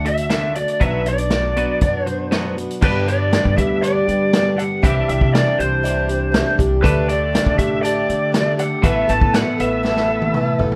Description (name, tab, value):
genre	folk rock and heartland rock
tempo	120 BPM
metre	4/4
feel	straight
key	unclear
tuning	A4 = 440 Hz
part	lead guitar through a small cranked amp	melody	0.0-10.6 s	B4 to A5	-23 LUFS	equal	overdrive
part	picked twelve-string acoustic guitar	accompaniment	0.0-10.8 s	G2 to A4	-26 LUFS	equal	none
part	twelve-string electric guitar	riff	0.0-10.8 s	G2 to A4	-27 LUFS	equal	none
part	upright bass	bass	0.0-10.8 s	A1 to G3	-26 LUFS	equal	none
part	vintage drum kit	drums	0.1-10.8 s	crash cymbal, hi-hat, kick drum, snare drum, toms	-23 LUFS	equal	none
part	bright reed electric piano	accompaniment	6.8-10.8 s	G4 to E5	-34 LUFS	equal	none
part	tonewheel organ	sustained chords	6.8-10.8 s	B3 to A4	-34 LUFS	equal	none
room	small room reverb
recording	rough home demo mix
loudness	-18 LUFS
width	mono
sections	0.0-2.8 A section; 2.8-10.8 B section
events	drum fill 9.8-10.8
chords	0.0 D; 0.8 Bm; 2.8 G; 4.8 Cadd9; 6.8 Dsus4; 8.8 Asus2